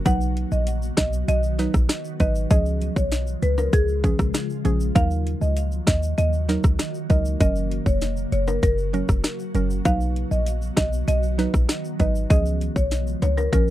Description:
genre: dancehall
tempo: 98 BPM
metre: 4/4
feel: straight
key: unclear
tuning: A4 = 441 Hz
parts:
  - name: mallet-like synth pluck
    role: accompaniment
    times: 0.0-13.7 s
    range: F3 to B4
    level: -27 LUFS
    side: right 3 dB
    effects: chorus, sidechain pumping
  - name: ethereal airy pad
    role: sustained chords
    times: 0.0-13.7 s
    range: Db3 to Gb4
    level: -32 LUFS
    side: equal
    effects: ensemble chorus, built-in reverb, phaser, sidechain pumping
  - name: marimba with medium mallets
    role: melody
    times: 0.1-13.7 s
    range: Ab4 to F#5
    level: -28 LUFS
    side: equal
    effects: digital delay
  - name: short 808-style bass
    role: bass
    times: 0.1-13.7 s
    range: F1 to Eb2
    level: -23 LUFS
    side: equal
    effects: none
  - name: island pop drum kit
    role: drums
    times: 0.1-13.7 s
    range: hi-hat, kick drum, rim click, snare drum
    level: -21 LUFS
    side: equal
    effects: overdrive
  - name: tube shaker and timbales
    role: percussion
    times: 0.1-13.7 s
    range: none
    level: -40 LUFS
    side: left 2 dB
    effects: none
room: little or no reverb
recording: dark, warm production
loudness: -20 LUFS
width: side -14 dB against mid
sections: 0.0-13.7 A section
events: none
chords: 0.1 B; 2.5 Db; 5.0 Ebm; 7.4 Gb; 9.9 B; 12.3 Db

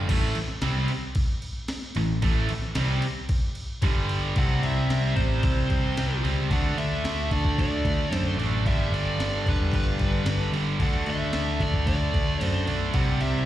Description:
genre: hard rock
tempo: 112 BPM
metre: 4/4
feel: straight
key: A minor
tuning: A4 = 440 Hz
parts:
  - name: distorted electric guitar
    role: riff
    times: 0.0-13.5 s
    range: G2 to D4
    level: -35 LUFS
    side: left 1 dB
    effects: distortion, slapback echo
  - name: tight distorted guitar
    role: riff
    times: 0.0-13.5 s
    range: G2 to D4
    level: -34 LUFS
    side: left 11 dB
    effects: distortion, slapback echo
  - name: tight distorted guitar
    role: riff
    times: 0.0-13.5 s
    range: G2 to D4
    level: -30 LUFS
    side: right 8 dB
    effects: distortion, slapback echo
  - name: modern bright picked electric bass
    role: bass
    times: 0.0-13.5 s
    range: E1 to F#2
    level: -26 LUFS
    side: left 1 dB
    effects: none
  - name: breakbeat sampler-style drum kit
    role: drums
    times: 0.1-13.3 s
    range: crash cymbal, kick drum, snare drum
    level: -28 LUFS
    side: equal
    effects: none
  - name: nasal lead guitar with a parked wah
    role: melody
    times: 4.4-13.5 s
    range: B4 to F#5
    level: -33 LUFS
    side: equal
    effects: overdrive, slapback echo
room: little or no reverb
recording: live gig heard through the venue's PA, recital hall reverb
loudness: -23 LUFS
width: side -13 dB against mid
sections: 0.1-4.4 A section; 4.4-13.5 B section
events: kick and snare drop out 3.8-4.4, 12.4-13.0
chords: 0.1 Am; 3.8 G5; 4.4 C; 6.5 D5; 8.7 G; 10.8 D5; 13.0 C

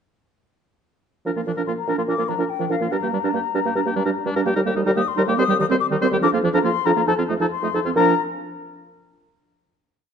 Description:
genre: quick classical-period movement for wind quintet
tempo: 132-150 BPM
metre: 4/4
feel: rubato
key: Bb major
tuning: A4 = 436 Hz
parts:
  - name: warm French horn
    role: accompaniment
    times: 1.2-8.1 s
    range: F3 to G3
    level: -27 LUFS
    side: equal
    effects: none
  - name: warm oboe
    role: second line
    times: 1.3-8.1 s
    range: D4 to C5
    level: -28 LUFS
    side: left 4 dB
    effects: none
  - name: warm clarinet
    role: accompaniment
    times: 1.3-8.1 s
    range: Eb3 to Eb4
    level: -25 LUFS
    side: right 9 dB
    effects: none
  - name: mellow bassoon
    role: bass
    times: 1.3-8.1 s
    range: Eb2 to Bb2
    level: -24 LUFS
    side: right 1 dB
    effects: none
  - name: mellow silver concert flute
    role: melody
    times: 1.7-8.2 s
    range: F5 to Eb6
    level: -25 LUFS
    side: left 11 dB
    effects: none
room: moderate recital hall reverb, RT60 1.6 s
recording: dark, warm production, nothing above 10.3 kHz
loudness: -18 LUFS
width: side -7 dB against mid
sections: 1.3-8.0 A section; 8.0-9.7 final chord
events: none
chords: 1.3 Bb; 2.9 Gm; 4.6 Eb; 5.4 Cm/Eb (rootless); 6.2 Bb5/F; 7.1 F; 8.0 Bb

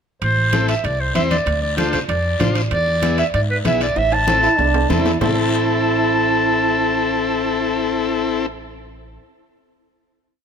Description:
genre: latin, cumbia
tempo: 192 BPM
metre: 4/4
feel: straight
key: A harmonic minor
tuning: A4 = 440 Hz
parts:
  - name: bright clarinet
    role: melody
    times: 0.2-8.5 s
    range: B4 to A5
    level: -20 LUFS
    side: right 1 dB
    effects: none
  - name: upright bass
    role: bass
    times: 0.2-9.2 s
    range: A1 to G#2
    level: -23 LUFS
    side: right 1 dB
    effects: none
  - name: guiro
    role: percussion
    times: 0.2-5.3 s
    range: none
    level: -31 LUFS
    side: left 4 dB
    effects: none
  - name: timbales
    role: percussion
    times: 0.2-5.3 s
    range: none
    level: -28 LUFS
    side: right 9 dB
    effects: none
  - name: congas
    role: percussion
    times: 0.4-5.3 s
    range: none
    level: -25 LUFS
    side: equal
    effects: none
  - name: overdriven combo organ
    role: accompaniment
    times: 0.5-8.5 s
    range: B3 to C5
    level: -21 LUFS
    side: left 6 dB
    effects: none
  - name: warm trombone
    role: second line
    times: 4.4-8.5 s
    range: D4 to E4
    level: -22 LUFS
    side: right 8 dB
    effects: none
room: moderate plate reverb, RT60 2.6 s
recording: none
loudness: -16 LUFS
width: side -7 dB against mid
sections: 0.2-5.2 A section; 5.2-7.7 final chord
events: drum fill 4.0-5.2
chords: 0.2 Am; 1.5 Dm; 2.7 E7; 4.0 Am

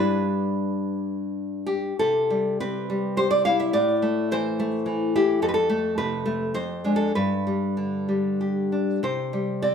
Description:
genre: romantic piece for solo classical guitar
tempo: 89-109 BPM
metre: 3/4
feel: rubato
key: C major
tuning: A4 = 440 Hz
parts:
  - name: nylon-string guitar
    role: solo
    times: 0.0-9.7 s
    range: F2 to F5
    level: -22 LUFS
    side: left 1 dB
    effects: none
room: wet studio reverb, RT60 1.0 s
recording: band playing live in one room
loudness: -22 LUFS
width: side -7 dB against mid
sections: 0.0-2.0 A section; 2.0-9.7 B section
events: none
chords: 0.0 G; 2.0 C; 3.7 Am; 5.4 F; 6.5 Dm7b5/F; 7.1 G; 9.0 C5

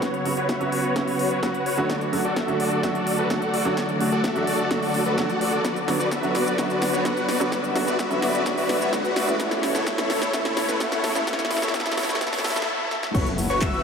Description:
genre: EDM, festival progressive house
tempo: 128 BPM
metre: 4/4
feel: straight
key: B minor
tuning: A4 = 442 Hz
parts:
  - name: bright baby grand piano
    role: accompaniment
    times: 0.0-12.7 s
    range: C#3 to F#4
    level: -27 LUFS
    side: right 2 dB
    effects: sidechain pumping, tape echo
  - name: muted studio string section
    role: sustained chords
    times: 0.0-13.8 s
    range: C#3 to E5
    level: -30 LUFS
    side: left 2 dB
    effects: sidechain pumping
  - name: supersaw chords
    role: riff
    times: 0.0-13.8 s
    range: E4 to F#5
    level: -25 LUFS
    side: equal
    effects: wide subtle chorus, cassette tape, sidechain pumping, low-pass filter, tape echo
  - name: big-room dance drum kit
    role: drums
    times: 0.0-13.8 s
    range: crash cymbal, handclaps, hi-hat, shaker, snare drum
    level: -29 LUFS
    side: left 1 dB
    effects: none
  - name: electronic kick drum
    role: drums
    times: 0.0-13.7 s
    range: none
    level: -30 LUFS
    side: left 1 dB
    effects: none
  - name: riser and impact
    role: sound effects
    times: 1.5-13.8 s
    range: none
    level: -36 LUFS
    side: equal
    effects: none
  - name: wide unison lead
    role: arpeggios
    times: 13.1-13.8 s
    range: C#6 to E6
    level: -28 LUFS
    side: left 2 dB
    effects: cassette tape, sidechain pumping
  - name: detuned saw bass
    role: bass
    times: 13.1-13.8 s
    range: F#1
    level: -30 LUFS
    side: left 1 dB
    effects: sidechain pumping
room: wet huge ambient reverb, RT60 4.4 s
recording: dreamy mix soaked in reverb, high-pass filter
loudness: -21 LUFS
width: side -6 dB against mid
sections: 0.0-13.1 A section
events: build-up 0.0-13.1; drum fill 0.0-12.7, 12.9; filter sweep on supersaw synth 0.0-13.1; filter sweep 0.0-13.1; stop 12.7-13.1; impact 13.1-13.8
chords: 0.0 F#sus4; 1.9 D; 5.6 Bm; 9.4 A; 13.1 F#sus4

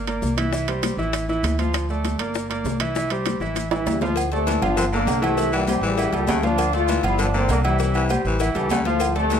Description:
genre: latin, salsa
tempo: 198 BPM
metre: 4/4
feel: straight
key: D minor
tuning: A4 = 435 Hz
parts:
  - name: clear grand piano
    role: accompaniment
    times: 0.0-9.4 s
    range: E3 to F5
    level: -25 LUFS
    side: right 1 dB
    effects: none
  - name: upright bass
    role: bass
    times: 0.0-9.4 s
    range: G1 to D2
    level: -26 LUFS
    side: equal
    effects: none
  - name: bongos and cowbell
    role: percussion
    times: 0.1-9.4 s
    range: none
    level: -32 LUFS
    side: left 10 dB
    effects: none
  - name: congas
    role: percussion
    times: 0.1-9.4 s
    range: none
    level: -30 LUFS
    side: left 4 dB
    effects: none
  - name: maracas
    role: percussion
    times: 0.1-9.4 s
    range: none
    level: -37 LUFS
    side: left 3 dB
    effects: none
  - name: timbales and agogo bells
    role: percussion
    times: 0.1-9.4 s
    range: none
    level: -28 LUFS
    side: right 5 dB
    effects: none
  - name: mellow trombone section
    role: melody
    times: 3.7-9.4 s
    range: G2 to F4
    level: -24 LUFS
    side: left 2 dB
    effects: none
  - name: raspy baritone saxophone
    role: second line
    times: 4.5-9.4 s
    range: C#3 to E3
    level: -28 LUFS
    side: left 4 dB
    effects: none
room: light reverb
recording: close, detailed microphones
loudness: -19 LUFS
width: side -8 dB against mid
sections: 0.0-4.2 A section; 4.2-9.4 B section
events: drum fill 3.6-4.2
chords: 0.0 Gm; 0.5 C; 1.1 A5; 1.7 Dm; 2.4 Gm; 3.0 C; 3.6 A7; 4.2 Dm; 4.8 Gm7; 5.4 C; 6.0 A7; 6.6 Dm; 7.2 Gm7; 7.8 C; 8.4 A7

